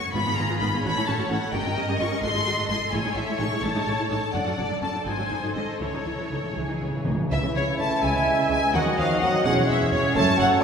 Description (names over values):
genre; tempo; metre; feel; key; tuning
classical; 84 BPM (dotted quarters); 6/8; rubato; C# minor; A4 = 440 Hz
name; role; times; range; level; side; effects
rich symphonic violin section; melody; 0.0-10.5 s; C#5 to C#6; -28 LUFS; left 2 dB; none
clear symphonic violin section; second line; 0.0-10.5 s; F4 to A5; -30 LUFS; left 2 dB; none
rich symphonic viola section; accompaniment; 0.1-10.6 s; E3 to E5; -29 LUFS; right 2 dB; none
rich symphonic double bass section; bass; 0.1-10.4 s; E1 to Eb2; -31 LUFS; right 2 dB; none
warm symphonic cello section; bass; 0.1-10.6 s; E2 to A3; -31 LUFS; right 1 dB; none
timpani; percussion; 0.1-0.8, 5.8-7.3 s; Ab2 to C#3; -32 LUFS; equal; none
bright silver concert flute; second line; 7.3-10.6 s; C#5 to A5; -29 LUFS; equal; none
warm clarinet; second line; 7.3-10.6 s; C4 to C#4; -30 LUFS; right 1 dB; none
dark bassoon; accompaniment; 7.3-10.6 s; E3 to A3; -32 LUFS; right 2 dB; none
clear trombone section; sustained chords; 7.3-10.6 s; C#3 to C#4; -32 LUFS; right 3 dB; none
mellow French horn section; sustained chords; 7.3-10.6 s; C#3 to A3; -30 LUFS; left 2 dB; none
mellow trumpet section; stabs; 7.3-10.6 s; E4 to A4; -31 LUFS; equal; none
room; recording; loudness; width
wet concert hall reverb, RT60 2.2 s; recorded in a church or concert hall; -22 LUFS; side -6 dB against mid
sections
0.0-7.3 A section; 7.3-10.6 A section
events
timpani fill 5.8-7.3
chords
0.1 Fdim/Ab; 0.8 F#m/A; 1.5 D#7/G; 2.2 G#7b9; 2.9 Amaj7; 4.3 D/F#; 5.1 G#7b9; 5.8 C#m; 8.7 Cdim/Eb; 9.4 C#m/E